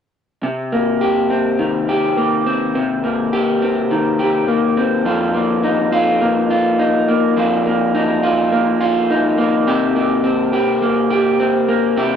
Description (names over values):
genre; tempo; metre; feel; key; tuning
indie pop; 104 BPM; 4/4; straight; C minor; A4 = 440 Hz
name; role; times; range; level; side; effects
electric guitar through a small old amp; solo; 0.4-12.2 s; F2 to G4; -14 LUFS; equal; lush chorus, vibrato effect
room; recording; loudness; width
digital ambience; dry, close 1970s-style studio recording; -14 LUFS; side -8 dB against mid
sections
0.4-5.1 A section; 5.1-12.2 B section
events
none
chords
0.4 Cm7; 5.1 F7sus4; 9.7 C5